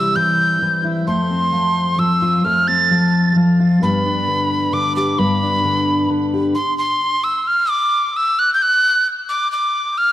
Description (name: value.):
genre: folk.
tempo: 132 BPM.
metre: 3/4.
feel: straight.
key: unclear.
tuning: A4 = 442 Hz.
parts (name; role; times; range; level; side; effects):
breathy tin whistle; melody; 0.0-10.1 s; B5 to A6; -16 LUFS; equal; digital delay.
fingerpicked steel-string acoustic guitar; accompaniment; 0.0-6.6 s; F2 to G4; -17 LUFS; left 1 dB; none.
room: moderate concert hall reverb, RT60 1.9 s.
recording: dark, warm production.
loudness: -14 LUFS.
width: side -13 dB against mid.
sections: 0.0-6.6 A section; 6.6-10.1 B section.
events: none.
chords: 0.0 C; 1.1 F; 3.8 G; 6.6 N.C..